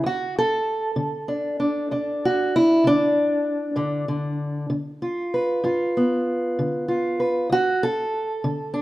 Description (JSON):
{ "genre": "acoustic country blues, solo or duo", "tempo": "64 BPM (dotted quarters)", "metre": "12/8", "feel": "straight", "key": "unclear", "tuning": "A4 = 441 Hz", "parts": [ { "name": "fingerpicked steel-string acoustic guitar", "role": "solo", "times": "0.0-8.8 s", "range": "D2 to B4", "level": "-20 LUFS", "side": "equal", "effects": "none" } ], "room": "wet stone room reverb, RT60 1.1 s", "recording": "band playing live in one room", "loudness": "-20 LUFS", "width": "side -16 dB against mid", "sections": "0.0-8.8 A section", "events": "steel-string acoustic guitar solo 0.0-8.8", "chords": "0.0 N.C.; 3.8 G7; 7.5 D", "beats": "| 0.03 0.97 1.90 2.83 | 3.77 4.70 5.64 6.57 | 7.50 8.44" }